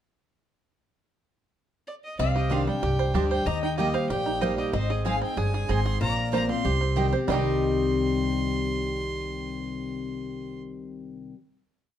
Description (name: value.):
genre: bluegrass.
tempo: 188 BPM.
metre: 4/4.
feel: straight.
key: C minor.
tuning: A4 = 440 Hz.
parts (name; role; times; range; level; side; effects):
clear fiddle; melody; 1.9-10.6 s; C5 to C6; -33 LUFS; right 1 dB; none.
lap resonator guitar; second line; 2.2-11.3 s; C5 to F5; -35 LUFS; left 6 dB; slapback echo.
picked steel-string acoustic guitar; accompaniment; 2.2-11.3 s; G2 to Ab4; -29 LUFS; left 3 dB; none.
bluegrass banjo; arpeggios; 2.2-11.3 s; G3 to C5; -31 LUFS; right 4 dB; none.
upright bass; bass; 2.2-11.3 s; G1 to Eb2; -29 LUFS; equal; none.
mandolin; stabs; 2.5-11.3 s; Bb3 to C6; -33 LUFS; right 5 dB; none.
room: moderate studio reverb, RT60 0.7 s.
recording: dark, warm production.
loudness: -24 LUFS.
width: side -10 dB against mid.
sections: 0.9-2.2 pickup bar; 2.2-7.3 A section; 7.3-9.8 final chord.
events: none.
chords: 0.9 N.C.; 2.2 Cmadd9; 3.5 Eb; 4.7 Ab; 6.0 Bbsus2; 6.6 Cm.